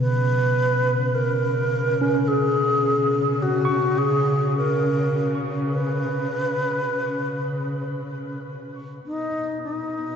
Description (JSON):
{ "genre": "ambient", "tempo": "53 BPM", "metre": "4/4", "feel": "straight", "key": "unclear", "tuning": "A4 = 445 Hz", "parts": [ { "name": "bright wooden-headed alto flute", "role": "melody", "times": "0.0-10.2 s", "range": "D#4 to B4", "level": "-23 LUFS", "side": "equal", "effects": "shimmer reverb, tape echo" }, { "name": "tine electric piano", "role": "arpeggios", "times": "0.0-9.1 s", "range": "B2 to C#6", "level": "-26 LUFS", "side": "equal", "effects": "fast stereo tremolo, tape echo" }, { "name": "dark studio cello section", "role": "bass", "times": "0.0-10.2 s", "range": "B2 to C#3", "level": "-27 LUFS", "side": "left 1 dB", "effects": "none" } ], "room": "wet cathedral reverb, RT60 4.9 s", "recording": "in a vast, echoing space, nothing above 7.7 kHz", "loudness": "-20 LUFS", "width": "side -7 dB against mid", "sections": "0.0-10.2 A section", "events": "fade-out 6.0-10.2", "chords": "0.0 C#5; 9.1 B" }